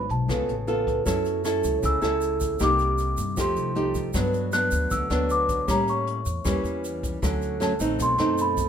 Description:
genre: bossa nova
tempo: 156 BPM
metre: 4/4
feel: straight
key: unclear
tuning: A4 = 441 Hz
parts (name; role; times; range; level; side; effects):
- large celesta; melody; 0.0-8.7 s; A5 to F#6; -27 LUFS; left 1 dB; none
- nylon-string guitar; accompaniment; 0.0-8.7 s; G2 to A4; -25 LUFS; right 1 dB; none
- upright bass; bass; 0.0-8.7 s; A1 to A2; -30 LUFS; equal; none
- jazz brush drum kit; drums; 0.1-8.7 s; hi-hat, kick drum, rim click; -32 LUFS; left 1 dB; none
- egg shaker; percussion; 1.1-8.7 s; none; -40 LUFS; right 4 dB; none
room: light reverb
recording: minimal, uncompressed stereo recording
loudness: -22 LUFS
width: side -8 dB against mid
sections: 0.0-8.7 A section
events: none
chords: 0.3 C#aug7; 1.1 F#m7; 2.6 Cm7; 3.4 F9; 4.1 Gmaj7; 5.7 A7b9; 7.2 Dmaj7; 8.0 B7b9

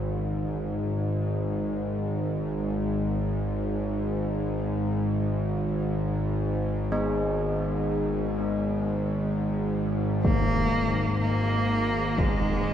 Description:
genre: dark ambient drone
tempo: free time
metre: none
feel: none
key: unclear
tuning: A4 = 436 Hz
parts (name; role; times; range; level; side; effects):
- carillon bells; arpeggios; 0.0-12.7 s; C#3 to D#4; -34 LUFS; equal; shimmer reverb, diffuse ambient delay
- bowed-like drone; drone; 0.0-12.7 s; G#1 to G#2; -26 LUFS; equal; built-in reverb
- warm cello; melody; 10.2-12.7 s; G#3 to A#3; -26 LUFS; right 1 dB; shimmer reverb, diffuse ambient delay
- impact; percussion; 10.2-12.4 s; none; -28 LUFS; equal; low-pass filter on sfx
room: moderate huge ambient reverb, RT60 7.8 s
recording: none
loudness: -25 LUFS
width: side -10 dB against mid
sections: 0.0-12.7 A section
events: none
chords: 0.0 G#5

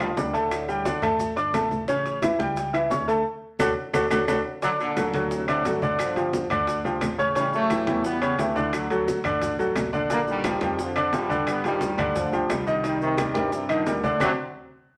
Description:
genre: latin, salsa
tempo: 175 BPM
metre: 4/4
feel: straight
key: unclear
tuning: A4 = 444 Hz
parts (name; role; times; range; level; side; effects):
- bright trombone section; melody; 0.0-1.0, 4.6-14.3 s; G2 to B3; -31 LUFS; equal; none
- bright upright piano; accompaniment; 0.0-14.3 s; C#3 to D6; -27 LUFS; equal; none
- modern bright fingered electric bass; bass; 0.0-14.3 s; G1 to G2; -37 LUFS; equal; none
- bongos; percussion; 0.0-14.3 s; none; -37 LUFS; equal; none
- claves; percussion; 0.0-14.3 s; none; -38 LUFS; equal; none
- congas; percussion; 0.0-14.3 s; none; -37 LUFS; equal; none
- maracas; percussion; 0.0-14.3 s; none; -48 LUFS; equal; none
- timbales; percussion; 0.0-14.3 s; none; -39 LUFS; equal; none
room: wet studio reverb, RT60 0.8 s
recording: none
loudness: -25 LUFS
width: mono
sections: 0.0-4.6 A section; 4.6-15.0 B section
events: band accent 3.3-4.6, 14.2-15.0; drum fill 3.8-4.6, 14.2-15.0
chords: 0.0 G7(no3); 0.5 Dsus4; 1.9 A7; 3.3 D; 4.6 D7; 6.0 G5; 7.4 A7; 8.7 D; 10.1 Bb6; 11.5 G5; 12.8 Cm9; 14.2 D7

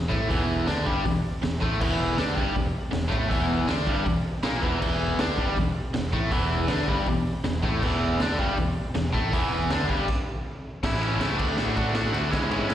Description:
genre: garage rock duo or trio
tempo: 160 BPM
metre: 4/4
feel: straight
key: unclear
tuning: A4 = 440 Hz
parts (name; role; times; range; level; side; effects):
- biting overdriven guitar; riff; 0.0-12.7 s; E2 to F#4; -25 LUFS; equal; slapback echo
- growling picked electric bass; bass; 0.0-12.7 s; E1 to A2; -29 LUFS; equal; overdrive
- raw garage drum kit; drums; 0.1-12.7 s; crash cymbal, hi-hat, kick drum, ride cymbal, snare drum; -28 LUFS; equal; none
room: light reverb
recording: live gig heard through the venue's PA, recital hall reverb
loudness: -23 LUFS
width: side -11 dB against mid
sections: 0.0-10.8 A section; 10.8-12.7 B section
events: stop 10.1-10.8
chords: 0.0 Em7; 10.8 A; 11.4 D

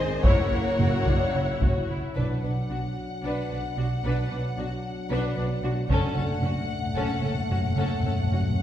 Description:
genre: cinematic, epic orchestral film score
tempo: 223 BPM (eighths)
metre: 7/8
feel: straight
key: B minor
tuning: A4 = 440 Hz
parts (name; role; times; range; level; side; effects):
- warm symphonic violin section; melody; 0.0-8.6 s; A#4 to F#5; -35 LUFS; left 3 dB; none
- warm studio violin section; second line; 0.0-8.4 s; F#4 to F#5; -34 LUFS; left 2 dB; none
- rich symphonic viola section; accompaniment; 0.0-8.4 s; C#4 to C#5; -34 LUFS; equal; none
- dark French horn section; sustained chords; 0.0-8.6 s; Eb3 to C#5; -34 LUFS; left 3 dB; none
- warm symphonic string section; sustained chords; 0.0-2.2 s; C4 to Ab5; -34 LUFS; equal; none
- warm trombone section; sustained chords; 0.0-1.9 s; C#3 to Ab3; -35 LUFS; right 2 dB; none
- warm symphonic cello section; bass; 0.0-8.4 s; F#2 to C4; -38 LUFS; right 2 dB; none
- warm symphonic double bass section; bass; 0.0-8.4 s; F#1 to B1; -29 LUFS; right 2 dB; none
- taiko ensemble; drums; 0.2-6.9 s; none; -25 LUFS; equal; none
- timpani; percussion; 2.2-2.9, 5.9-8.6 s; F#2 to B2; -29 LUFS; left 1 dB; none
room: wet recital hall reverb, RT60 1.7 s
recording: recorded in a church or concert hall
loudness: -24 LUFS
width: side -11 dB against mid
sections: 0.0-2.2 A section; 2.2-8.6 B section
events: timpani fill 5.9-8.6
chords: 0.2 F#7; 2.2 Bm; 5.9 F#m

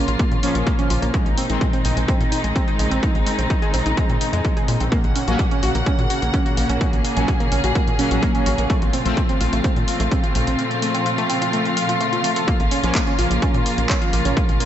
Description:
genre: melodic techno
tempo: 127 BPM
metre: 4/4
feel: straight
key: Bb minor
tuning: A4 = 444 Hz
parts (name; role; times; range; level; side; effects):
- rich symphonic string section; sustained chords; 0.0-14.7 s; Db3 to Gb5; -24 LUFS; left 1 dB; sidechain pumping
- analog pluck; arpeggios; 0.0-14.7 s; Ab3 to F5; -26 LUFS; equal; chorus, sidechain pumping, analog delay
- tight sequencer bass; bass; 0.0-14.6 s; Bb1 to Bb2; -23 LUFS; equal; sidechain pumping
- swarming drone; drone; 0.0-14.7 s; Bb2 to Db3; -31 LUFS; right 1 dB; built-in reverb, sidechain pumping
- airy breathy pad; texture; 0.0-14.7 s; C4 to Gb5; -34 LUFS; right 1 dB; none
- techno drum kit; drums; 0.1-14.7 s; handclaps, hi-hat; -29 LUFS; equal; overdrive, studio reverb
- electronic kick drum; drums; 0.2-14.5 s; none; -20 LUFS; equal; overdrive, studio reverb
- analog synth brass; stabs; 0.4-1.6, 5.3-9.2, 12.8-13.0 s; Eb3 to Db4; -26 LUFS; equal; chorus, sidechain pumping, analog delay
room: moderate lush hall reverb, RT60 2.0 s, digital ambience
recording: dreamy mix soaked in reverb, nothing above 8.0 kHz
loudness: -17 LUFS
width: side -11 dB against mid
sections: 0.0-14.7 A section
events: none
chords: 0.0 Bbm; 1.1 Ab/Bb; 4.9 Gb/Bb; 8.7 F/Bb; 12.5 Bbm

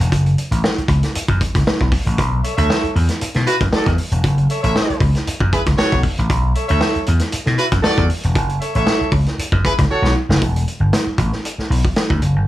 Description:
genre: funk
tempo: 116 BPM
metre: 4/4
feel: straight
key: B minor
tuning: A4 = 443 Hz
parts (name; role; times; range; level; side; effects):
- vintage slap bass; bass; 0.0-12.5 s; E1 to B2; -17 LUFS; equal; none
- vintage drum kit; drums; 0.0-12.3 s; hi-hat, kick drum, snare drum; -19 LUFS; equal; none
- warm horn section; second line; 2.4-10.1 s; E4 to E5; -20 LUFS; right 1 dB; none
room: little or no reverb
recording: small room ambience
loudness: -15 LUFS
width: side -14 dB against mid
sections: 0.0-10.4 A section; 10.4-12.5 B section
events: drum fill 9.9-10.4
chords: 0.1 F#m; 2.2 B9sus4; 4.2 F#m7; 6.3 B9sus4; 8.4 F#m7; 10.4 Em9

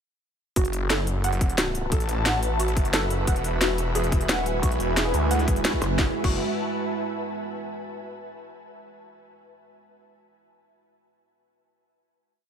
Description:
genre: dark technical drum and bass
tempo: 177 BPM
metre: 4/4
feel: straight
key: F# minor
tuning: A4 = 440 Hz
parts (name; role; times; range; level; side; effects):
- soft round pluck; arpeggios; 0.6-6.4 s; F#4 to F#5; -31 LUFS; right 1 dB; ensemble chorus, sidechain pumping, dub echo
- snarling distorted saw bass; bass; 0.6-6.4 s; E1 to D2; -26 LUFS; equal; distortion, sidechain pumping
- drum and bass drum kit; drums; 0.6-6.3 s; crash cymbal, hi-hat, snare drum; -27 LUFS; equal; small room ambience
- electronic kick drum; drums; 0.6-6.3 s; none; -24 LUFS; equal; small room ambience
- ethereal airy pad; texture; 1.3-7.3 s; F#4 to A5; -31 LUFS; equal; ensemble chorus, built-in reverb, sidechain pumping
- deep dark ambient pad; sustained chords; 3.9-6.1 s; G#3 to B4; -31 LUFS; right 2 dB; chorus, built-in reverb, sidechain pumping
- pulsing pluck wobble bass; bass; 5.8-6.0 s; F#1; -25 LUFS; equal; chorus
room: light reverb, digital ambience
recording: none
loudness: -22 LUFS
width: side -8 dB against mid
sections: 0.6-6.0 drop; 6.0-7.3 final chord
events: drop 0.6-6.0; band accent 5.6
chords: 0.6 F#m; 3.3 E; 6.0 F#m

